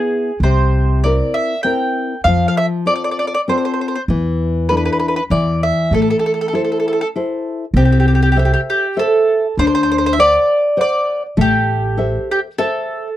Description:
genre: italian folk, Italian serenade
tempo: 98 BPM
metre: 3/4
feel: straight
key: A harmonic minor, C major from 7.7 s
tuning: A4 = 440 Hz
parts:
  - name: mandolin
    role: melody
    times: 0.0-13.2 s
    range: G4 to G5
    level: -16 LUFS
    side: right 1 dB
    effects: none
  - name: nylon-string guitar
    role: accompaniment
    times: 0.0-13.1 s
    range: C3 to F#5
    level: -19 LUFS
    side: left 3 dB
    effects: none
  - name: upright bass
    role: bass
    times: 0.4-12.2 s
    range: A1 to F2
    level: -16 LUFS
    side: right 1 dB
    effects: none
room: little or no reverb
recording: dry, close 1970s-style studio recording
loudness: -14 LUFS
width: side -13 dB against mid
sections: 0.0-7.7 A section; 7.7-13.2 B section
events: none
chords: 0.4 C7; 2.3 F; 4.1 E7sus4; 5.3 Dsus2/E; 5.9 Am; 7.7 C6; 9.6 D7; 11.4 Am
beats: | 0.42 1.03 1.64 | 2.25 2.86 3.47 | 4.08 4.69 5.30 | 5.91 6.52 7.13 | 7.75 8.36 8.96 | 9.57 10.18 10.78 | 11.38 11.98 12.58

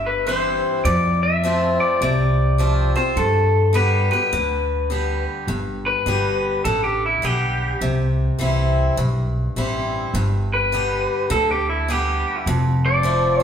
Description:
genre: honky-tonk and classic country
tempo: 103 BPM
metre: 4/4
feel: swing 63% on 8ths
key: G mixolydian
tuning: A4 = 440 Hz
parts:
  - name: electric guitar through a small old amp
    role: melody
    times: 0.0-13.4 s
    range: E4 to E5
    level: -20 LUFS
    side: left 1 dB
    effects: none
  - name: picked swing-style acoustic guitar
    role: accompaniment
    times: 0.0-13.4 s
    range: F2 to G4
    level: -24 LUFS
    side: left 1 dB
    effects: none
  - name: upright bass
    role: bass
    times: 0.0-13.4 s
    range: F1 to G2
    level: -21 LUFS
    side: equal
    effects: none
room: wet stone room reverb, RT60 1.4 s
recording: band playing live in one room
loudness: -17 LUFS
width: side -8 dB against mid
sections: 0.0-5.5 A section; 5.5-13.4 B section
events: clean electric guitar solo 5.5-13.4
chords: 0.0 C; 0.8 F; 3.2 G; 7.8 C; 10.1 G; 12.5 F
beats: 0.27 | 0.85 1.43 2.01 2.59 | 3.17 3.75 4.33 4.91 | 5.50 6.08 6.66 7.24 | 7.82 8.40 8.98 9.56 | 10.14 10.72 11.30 11.88 | 12.46 13.05

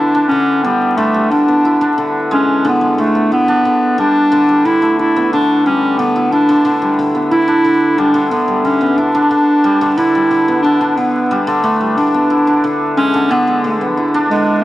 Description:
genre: folktronica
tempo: 90 BPM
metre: 4/4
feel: straight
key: E dorian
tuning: A4 = 440 Hz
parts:
  - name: mellow clarinet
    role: melody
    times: 0.0-14.6 s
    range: G#3 to E4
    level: -13 LUFS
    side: equal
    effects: none
  - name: hammered dulcimer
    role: arpeggios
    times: 0.0-14.6 s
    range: D3 to E4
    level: -15 LUFS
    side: left 1 dB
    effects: tape echo
room: little or no reverb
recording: dry, close 1970s-style studio recording, vinyl crackle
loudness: -11 LUFS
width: side -15 dB against mid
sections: 0.0-14.6 A section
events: none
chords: 0.0 Em7; 1.3 E7; 4.0 A9sus4; 12.0 E7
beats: 0.65 | 1.31 1.98 2.65 3.31 | 3.98 4.65 5.31 5.98 | 6.65 7.31 7.98 8.65 | 9.31 9.98 10.65 11.31 | 11.98 12.65 13.31 13.98

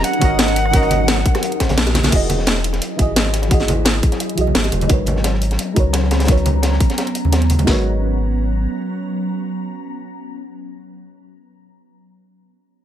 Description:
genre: liquid drum and bass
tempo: 173 BPM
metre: 4/4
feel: swing 53% on 16ths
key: G# minor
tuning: A4 = 441 Hz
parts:
  - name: breathy bright jazz flute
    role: melody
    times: 0.0-1.8 s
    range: F#5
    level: -21 LUFS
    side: right 1 dB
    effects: ping-pong delay
  - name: deep mellow chord stab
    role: accompaniment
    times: 0.0-12.8 s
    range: D#3 to D#5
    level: -24 LUFS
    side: right 2 dB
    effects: chorus, cassette tape, dub echo
  - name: glassy FM pad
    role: sustained chords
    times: 0.0-11.2 s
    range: F#3 to A#5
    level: -24 LUFS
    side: left 1 dB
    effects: ensemble chorus, built-in reverb, phaser
  - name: warm sub bass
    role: bass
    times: 0.0-8.7 s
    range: E1 to D#2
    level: -19 LUFS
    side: equal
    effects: none
  - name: crunchy breakbeat drum kit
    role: drums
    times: 0.0-7.7 s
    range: hi-hat, snare drum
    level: -26 LUFS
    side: equal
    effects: high-pass filter on hats, studio reverb, high-pass filter on snare, high-pass filter on room
  - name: garage drum kit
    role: drums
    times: 0.0-7.7 s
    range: crash cymbal, hi-hat, rim click, snare drum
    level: -19 LUFS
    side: equal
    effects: studio reverb
  - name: garage drum kit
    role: drums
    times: 0.2-7.8 s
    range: kick drum, snare drum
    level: -16 LUFS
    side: equal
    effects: studio reverb
  - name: bongos and congas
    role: percussion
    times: 0.2-7.7 s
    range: none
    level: -25 LUFS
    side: right 2 dB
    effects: none
room: small room ambience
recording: none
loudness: -15 LUFS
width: side -11 dB against mid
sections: 0.0-2.1 A section; 2.1-7.7 B section; 7.7-10.4 C section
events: drop 0.0-2.1; drum fill 1.9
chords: 0.0 D#m7; 2.1 Emaj9; 4.9 G#m11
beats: 0.04 0.39 | 0.73 1.08 1.43 1.78 | 2.12 2.47 2.82 3.16 | 3.51 3.86 4.20 4.55 | 4.90 5.24 5.59 5.94 | 6.28 6.63 6.98 7.33 | 7.67 8.02 8.37 8.71 | 9.06 9.41 9.75 10.10

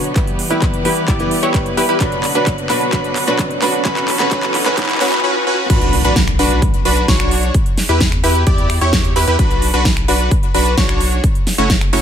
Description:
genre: EDM, festival progressive house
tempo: 130 BPM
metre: 4/4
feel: straight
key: B minor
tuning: A4 = 436 Hz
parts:
  - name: fingerpicked old ladder-braced acoustic guitar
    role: accompaniment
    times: 0.0-5.2 s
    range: B2 to B4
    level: -22 LUFS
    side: right 1 dB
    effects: sidechain pumping, ping-pong delay
  - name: rich studio string section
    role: sustained chords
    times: 0.0-5.2 s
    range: D3 to B4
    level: -24 LUFS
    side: left 2 dB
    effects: sidechain pumping
  - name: clear baby grand piano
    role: arpeggios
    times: 0.0-12.0 s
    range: B5 to D6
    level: -23 LUFS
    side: equal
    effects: sidechain pumping, low-pass filter, ping-pong delay
  - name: supersaw stab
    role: riff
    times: 0.0-12.0 s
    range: A3 to D5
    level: -18 LUFS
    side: equal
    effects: vintage 12-bit sampler grit, sidechain pumping, low-pass filter, ping-pong delay
  - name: big-room dance drum kit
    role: drums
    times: 0.0-12.0 s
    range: crash cymbal, finger snaps, handclaps, hi-hat, snare drum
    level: -21 LUFS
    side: right 1 dB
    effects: none
  - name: riser, noise sweep and impact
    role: sound effects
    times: 2.1-7.5 s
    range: none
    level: -26 LUFS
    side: equal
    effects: none
  - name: electronic kick drum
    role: drums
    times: 0.2-11.8 s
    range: none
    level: -17 LUFS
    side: equal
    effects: none
  - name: saturated sub bass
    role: bass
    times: 5.7-12.0 s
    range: F#1 to E2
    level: -18 LUFS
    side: equal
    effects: sidechain pumping
room: light reverb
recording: high-pass filter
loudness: -13 LUFS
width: side -8 dB against mid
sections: 0.0-5.7 A section; 5.7-12.0 B section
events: build-up 0.0-5.7; drum fill 0.0-5.2; filter sweep on supersaw synth 0.0-5.7; filter sweep on grand piano 0.0-5.7; filter sweep 0.0-5.7; riser 2.1-5.7; noise sweep 3.9-5.7; drop 5.7-12.0; impact 5.7-7.5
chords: 0.2 Em; 2.0 Bm; 3.9 F#m7; 5.7 Bm; 7.5 Em; 9.4 Bm; 11.2 F#m7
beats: | 0.16 0.62 1.08 1.54 | 2.01 2.47 2.93 3.39 | 3.85 4.31 4.78 5.24 | 5.70 6.16 6.62 7.08 | 7.54 8.01 8.47 8.93 | 9.39 9.85 10.31 10.78 | 11.24 11.70

